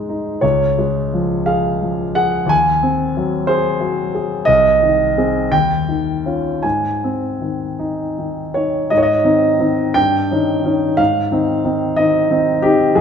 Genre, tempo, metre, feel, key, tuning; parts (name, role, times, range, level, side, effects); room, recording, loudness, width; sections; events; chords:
classical, romantic character piece for solo piano; 51-63 BPM (dotted quarters); 6/8; rubato; Ab major from 4.5 s; A4 = 439 Hz
warm concert grand piano; solo; 0.0-13.0 s; C2 to Ab5; -14 LUFS; equal
wet scoring stage reverb, RT60 1.8 s; minimal, uncompressed stereo recording; -14 LUFS; side -7 dB against mid
0.0-8.9 A section; 8.9-13.0 B section
0.4 Db; 2.5 Ab7/Eb; 4.5 Ab/C; 5.5 Eb9; 6.6 Ab; 10.0 Eb7/G; 11.0 Ab